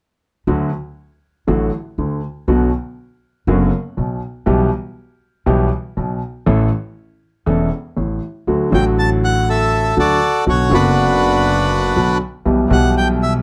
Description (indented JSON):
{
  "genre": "tango",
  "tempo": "120 BPM",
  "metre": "4/4",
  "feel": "rubato",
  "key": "D major",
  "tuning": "A4 = 440 Hz",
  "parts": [
    { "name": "warm grand piano", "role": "accompaniment", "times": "0.5-13.4 s", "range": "E1 to A4", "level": "-19 LUFS", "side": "equal", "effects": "none" },
    { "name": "upright bass", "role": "bass", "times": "0.5-13.4 s", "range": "E1 to D2", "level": "-22 LUFS", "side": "equal", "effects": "none" },
    { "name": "bandoneon", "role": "melody", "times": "8.7-13.3 s", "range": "D4 to A5", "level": "-19 LUFS", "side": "equal", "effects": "none" }
  ],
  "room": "light reverb",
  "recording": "dark, warm production",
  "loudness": "-17 LUFS",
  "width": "mono",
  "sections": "0.5-8.5 A section; 8.5-13.4 B section",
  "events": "none",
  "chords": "0.5 D; 2.5 Bm; 4.5 Em/B; 6.5 A; 8.5 D; 10.5 Bm; 12.5 Em/B",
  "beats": "| 0.47 0.98 1.48 1.98 | 2.48 2.98 3.48 3.98 | 4.47 4.97 5.47 5.97 | 6.47 6.97 7.47 7.97 | 8.47 8.97 9.47 9.97 | 10.47 10.96 11.46 11.96 | 12.46 12.95"
}